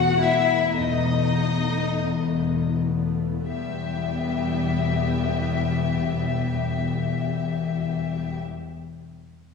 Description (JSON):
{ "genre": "classical, slow romantic movement for string orchestra", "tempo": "40-55 BPM", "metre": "4/4", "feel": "rubato", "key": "E minor", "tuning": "A4 = 440 Hz", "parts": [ { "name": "warm chamber violin section", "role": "melody", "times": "0.0-8.4 s", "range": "D#5 to F#5", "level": "-28 LUFS", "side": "left 6 dB", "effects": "none" }, { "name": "warm symphonic violin section", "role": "second line", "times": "0.0-8.4 s", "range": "D#4 to G4", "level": "-30 LUFS", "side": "left 4 dB", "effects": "none" }, { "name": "dark studio viola section", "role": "accompaniment", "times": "0.0-8.4 s", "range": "G3 to B3", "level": "-31 LUFS", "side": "left 2 dB", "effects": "none" }, { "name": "warm studio cello section", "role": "bass", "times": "0.0-8.4 s", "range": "E2", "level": "-28 LUFS", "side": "left 6 dB", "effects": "none" }, { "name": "warm studio double bass section", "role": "bass", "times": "0.0-8.4 s", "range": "E1", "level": "-28 LUFS", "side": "left 1 dB", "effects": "none" } ], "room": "wet concert hall reverb, RT60 1.7 s", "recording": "heard from further back in the room, small room ambience", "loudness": "-22 LUFS", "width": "side -5 dB against mid", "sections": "0.0-3.5 A section; 3.5-8.9 B section", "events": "slowing down 0.0-3.5", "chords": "0.0 B7/E; 3.5 Em" }